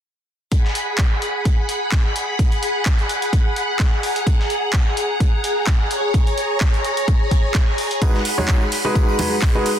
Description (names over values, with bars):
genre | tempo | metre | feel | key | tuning
piano house | 128 BPM | 4/4 | swing 54% on 16ths | G# minor | A4 = 440 Hz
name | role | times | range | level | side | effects
string machine, violins | sustained chords | 0.5-9.8 s | G#4 to B5 | -22 LUFS | equal | ensemble chorus, sidechain pumping
breakbeat sampler-style drum kit | drums | 0.5-9.8 s | hi-hat, snare drum | -30 LUFS | left 1 dB | sidechain pumping on hats, high-pass filter on hats, high-pass filter on snare, high-pass filter on room
electronic kick drum | drums | 0.5-9.5 s | none | -17 LUFS | equal | none
house drum kit | drums | 1.0-9.8 s | handclaps, hi-hat | -26 LUFS | right 1 dB | none
warm baby grand piano | riff | 8.0-9.7 s | G#3 to C#5 | -21 LUFS | equal | sidechain pumping, dub echo
tambourine and congas | percussion | 8.0-9.8 s | none | -29 LUFS | right 1 dB | none
room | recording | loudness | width
light reverb, digital ambience | dense, heavily limited modern master | -16 LUFS | side -10 dB against mid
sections
0.5-9.8 A section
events
none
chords
0.5 G#m7; 4.0 F#add9; 5.9 A#m7; 8.0 G#m7